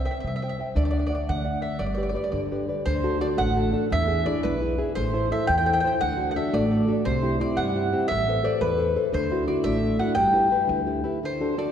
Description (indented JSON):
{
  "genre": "italian folk, Italian serenade",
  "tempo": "115 BPM (dotted quarters)",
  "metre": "6/8",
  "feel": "straight",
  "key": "unclear",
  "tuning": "A4 = 440 Hz",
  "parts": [
    { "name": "mandolin", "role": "melody", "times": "0.0-11.7 s", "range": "B4 to G5", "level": "-26 LUFS", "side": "equal", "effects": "none" },
    { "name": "nylon-string guitar", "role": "accompaniment", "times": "0.0-11.7 s", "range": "B2 to G5", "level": "-25 LUFS", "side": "left 1 dB", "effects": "none" },
    { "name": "upright bass", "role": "bass", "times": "0.0-11.0 s", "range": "G1 to D3", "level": "-28 LUFS", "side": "equal", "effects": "none" }
  ],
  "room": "wet concert hall reverb, RT60 2.1 s",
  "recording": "heard from further back in the room",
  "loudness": "-22 LUFS",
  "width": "side -8 dB against mid",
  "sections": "0.0-2.9 A section; 2.9-11.2 B section",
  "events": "none",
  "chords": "0.0 C; 0.8 Dadd9; 1.8 G; 2.9 D; 3.9 E7; 5.0 Am; 6.0 D; 7.0 C; 8.1 Amadd9; 9.1 Dadd9; 10.2 G6; 11.2 D"
}